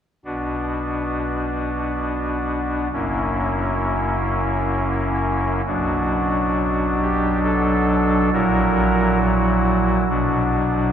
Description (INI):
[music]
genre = classical, chorale-style piece for pipe organ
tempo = 68 BPM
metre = 3/4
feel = rubato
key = B minor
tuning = A4 = 440 Hz
[part]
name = pipe organ, soft reed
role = solo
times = 0.2-10.9 s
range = F#1 to A#4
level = -18 LUFS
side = equal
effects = none
[sound]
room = wet cathedral reverb, RT60 6.2 s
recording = heard from further back in the room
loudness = -18 LUFS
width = side -9 dB against mid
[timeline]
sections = 0.3-5.7 A section; 5.7-10.9 B section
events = none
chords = 0.3 Bm; 2.9 F#7; 5.7 Bm; 8.3 F#7/A#; 10.1 Bm